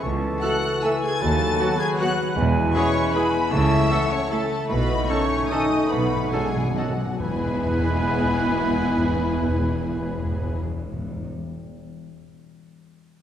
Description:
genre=classical, orchestral ballroom waltz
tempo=130-166 BPM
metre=3/4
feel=rubato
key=E major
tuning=A4 = 440 Hz
part: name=warm symphonic violin section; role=melody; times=0.0-10.6 s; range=F#5 to A6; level=-31 LUFS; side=left 4 dB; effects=none
part: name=mellow clarinet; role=second line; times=0.0-10.6 s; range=D#4 to A4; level=-31 LUFS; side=left 2 dB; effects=none
part: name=mellow cor anglais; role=second line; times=0.0-10.6 s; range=B4 to C#5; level=-33 LUFS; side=right 2 dB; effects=none
part: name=silver concert flute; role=second line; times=0.0-10.6 s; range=D#5 to B5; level=-32 LUFS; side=left 1 dB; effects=none
part: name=warm symphonic violin section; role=second line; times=0.0-10.6 s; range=F#4 to A5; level=-33 LUFS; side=left 1 dB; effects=none
part: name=dark bassoon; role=accompaniment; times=0.0-10.6 s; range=E3 to A3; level=-31 LUFS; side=right 2 dB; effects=none
part: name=warm French horn section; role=sustained chords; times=0.0-10.6 s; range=F#3 to A4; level=-30 LUFS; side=left 3 dB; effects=none
part: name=concert harp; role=arpeggios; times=0.0-11.4 s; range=B2 to E5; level=-32 LUFS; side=left 7 dB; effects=none
part: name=warm symphonic cello section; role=bass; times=0.0-10.6 s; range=C#2 to C#3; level=-30 LUFS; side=right 2 dB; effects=none
part: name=warm symphonic double bass section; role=bass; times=0.0-10.6 s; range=E1 to D#2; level=-28 LUFS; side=right 2 dB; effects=none
part: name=warm symphonic viola section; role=accompaniment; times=0.4-10.6 s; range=G#3 to A4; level=-31 LUFS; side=equal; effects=none
part: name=dark trombone section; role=sustained chords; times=0.4-10.6 s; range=D#3 to C#4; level=-34 LUFS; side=right 3 dB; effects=none
part: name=clear trumpet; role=stabs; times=0.4-10.6 s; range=F#4 to B4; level=-32 LUFS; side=right 1 dB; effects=none
part: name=timpani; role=percussion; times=2.4-11.3 s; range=E2 to B2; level=-29 LUFS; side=left 1 dB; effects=none
room=wet concert hall reverb, RT60 2.0 s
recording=dark, warm production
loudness=-20 LUFS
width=side -10 dB against mid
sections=0.0-7.2 A section; 7.2-9.8 B section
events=slowing down 4.1-7.2; timpani fill 4.7-7.2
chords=0.0 A/C#; 1.2 B7/D#; 2.4 E; 3.5 A/C#; 4.7 B9; 7.2 E

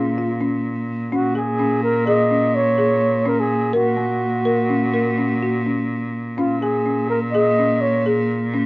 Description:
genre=contemporary instrumental, chamber music in an uneven meter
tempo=251 BPM (eighths)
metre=11/8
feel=straight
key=Bb minor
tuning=A4 = 440 Hz
part: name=breathy flugelhorn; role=melody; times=0.0-8.1 s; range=F4 to Eb5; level=-20 LUFS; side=right 1 dB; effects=none
part: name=folk marimba with medium mallets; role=arpeggios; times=0.0-8.7 s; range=Bb3 to Bb4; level=-22 LUFS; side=left 1 dB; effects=none
part: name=bright cello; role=bass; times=0.0-8.7 s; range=Bb2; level=-22 LUFS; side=equal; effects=none
room=moderate studio reverb, RT60 0.6 s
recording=worn, warbling old tape, cassette tape, warbly pitch drift, nothing above 7.5 kHz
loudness=-17 LUFS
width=side -22 dB against mid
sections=0.0-8.7 A section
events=none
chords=0.0 Bbm; 1.1 Absus24/Bb; 3.7 Gb/Bb; 6.4 Bbm7

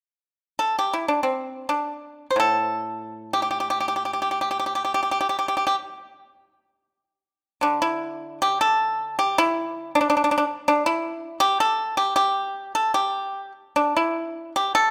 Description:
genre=chinese traditional, Chinese solo plucked strings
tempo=free time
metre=none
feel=none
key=G zhi mode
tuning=A4 = 440 Hz
part: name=pipa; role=solo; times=0.6-14.9 s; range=A2 to C5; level=-23 LUFS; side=equal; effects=none
room=moderate recital hall reverb, RT60 1.6 s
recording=none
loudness=-24 LUFS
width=mono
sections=0.2-7.6 A section; 7.6-14.9 B section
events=none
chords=none

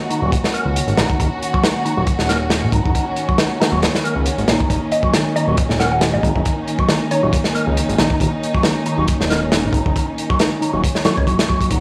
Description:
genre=breakbeat, breaks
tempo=137 BPM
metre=4/4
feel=swing 55% on 16ths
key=Eb minor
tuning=A4 = 440 Hz
part: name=mallet-like synth pluck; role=melody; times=0.0-0.3, 4.9-7.5 s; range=Db5 to Gb5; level=-26 LUFS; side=equal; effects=chorus, phaser, small speaker sound, tape echo
part: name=warm studio string section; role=sustained chords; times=0.0-11.8 s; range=Eb3 to Gb4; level=-25 LUFS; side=equal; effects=sidechain pumping
part: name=downlifter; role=sound effects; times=0.0-1.2 s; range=none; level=barely audible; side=none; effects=none
part: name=percussive tonewheel organ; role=riff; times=0.1-11.8 s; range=Eb3 to Db4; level=-25 LUFS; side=equal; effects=overdrive, chorus vibrato, fast rotary speaker, tape echo
part: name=crunchy breakbeat drum kit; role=drums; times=0.1-11.8 s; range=hi-hat, kick drum, snare drum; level=-21 LUFS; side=equal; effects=none
part: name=fat analog bass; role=bass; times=0.2-11.8 s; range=Eb1 to Db2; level=-22 LUFS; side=equal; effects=none
room=light reverb, small room reverb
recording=dry, gritty hardware recording, studio reverb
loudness=-18 LUFS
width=mono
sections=0.0-11.8 A section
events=none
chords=0.0 Ebm7

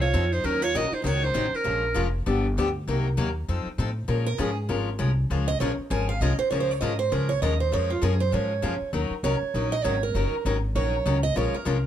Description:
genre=acoustic string swing (jazz manouche)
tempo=198 BPM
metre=4/4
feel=swing 57% on 8ths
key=Bb minor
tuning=A4 = 440 Hz
part: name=bright clarinet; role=melody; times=0.0-2.1 s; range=Bb4 to Eb5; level=-26 LUFS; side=right 2 dB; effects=none
part: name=picked steel-string acoustic guitar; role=second line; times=0.0-2.1, 4.3-11.9 s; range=Db4 to Ab5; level=-28 LUFS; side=right 6 dB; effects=slapback echo
part: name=picked steel-string acoustic guitar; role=accompaniment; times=0.0-11.8 s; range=C3 to Bb4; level=-29 LUFS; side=left 5 dB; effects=none
part: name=upright bass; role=bass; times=0.0-11.9 s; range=F1 to Bb2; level=-26 LUFS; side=equal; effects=none
room=light reverb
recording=dark, warm production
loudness=-23 LUFS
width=side -10 dB against mid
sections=0.0-4.1 A section; 4.1-11.9 B section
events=steel-string acoustic guitar solo 4.1-11.9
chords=0.4 Ebm7; 1.7 Bbm7; 2.3 G7; 2.9 Cm7b5; 3.5 F7; 4.1 Bbm7; 8.9 Ebm7; 11.4 Bbm7

